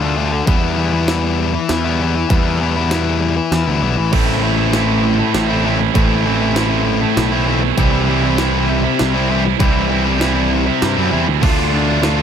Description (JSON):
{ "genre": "post-rock", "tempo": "99 BPM", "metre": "3/4", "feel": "straight", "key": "unclear", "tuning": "A4 = 439 Hz", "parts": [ { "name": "distorted electric guitar", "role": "riff", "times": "0.0-12.2 s", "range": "A2 to F4", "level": "-18 LUFS", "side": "left 7 dB", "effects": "overdrive" }, { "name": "fuzz picked electric bass", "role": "bass", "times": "0.0-12.2 s", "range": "A1 to G2", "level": "-18 LUFS", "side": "right 1 dB", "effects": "overdrive" }, { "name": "jungle sampler-style drum kit", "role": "drums", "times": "0.5-12.2 s", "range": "crash cymbal, hi-hat, kick drum, snare drum", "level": "-18 LUFS", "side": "right 1 dB", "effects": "none" }, { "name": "tight distorted guitar", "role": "riff", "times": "4.1-12.2 s", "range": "A2 to F4", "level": "-19 LUFS", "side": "right 16 dB", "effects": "distortion" } ], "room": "little or no reverb", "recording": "none", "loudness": "-13 LUFS", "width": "side -8 dB against mid", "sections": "0.0-12.2 A section", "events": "kick and snare drop out 3.8-4.1", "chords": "0.5 Em; 4.1 Am; 7.8 C; 11.4 Dm" }